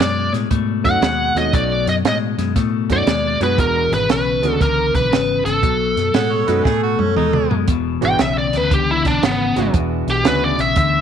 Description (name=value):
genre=electric blues shuffle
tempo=117 BPM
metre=4/4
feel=swing 66% on 8ths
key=E mixolydian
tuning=A4 = 440 Hz
part: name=biting lead guitar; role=melody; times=0.0-11.0 s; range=B3 to G5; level=-19 LUFS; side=equal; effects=overdrive
part: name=clean electric guitar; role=riff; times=0.0-11.0 s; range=E2 to A3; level=-22 LUFS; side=left 12 dB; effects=none
part: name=vintage muted fingered electric bass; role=bass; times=0.0-11.0 s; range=E1 to A2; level=-23 LUFS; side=equal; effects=none
part: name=compact cocktail drum kit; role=drums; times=0.0-10.9 s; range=hi-hat, kick drum, snare drum, toms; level=-21 LUFS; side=right 4 dB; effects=none
part: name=warm upright piano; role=accompaniment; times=0.8-10.6 s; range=E3 to F#4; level=-25 LUFS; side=right 13 dB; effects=none
part: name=warm harmonica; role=second line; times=6.2-7.6 s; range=C#4 to F#5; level=-25 LUFS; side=right 10 dB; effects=overdrive
room=light reverb, small room ambience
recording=1960s-style stereo with parts hard left and right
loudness=-15 LUFS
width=side -8 dB against mid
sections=0.0-7.7 A section; 7.7-11.0 B section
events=drum fill 6.7-7.7; lead electric guitar solo 7.7-11.0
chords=0.0 B7; 3.6 E7; 5.6 B7; 7.7 E7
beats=0.51 1.02 | 1.53 2.04 2.55 3.07 | 3.58 4.09 4.61 5.12 | 5.63 6.14 6.66 7.17 | 7.68 8.20 8.71 9.22 | 9.74 10.25 10.76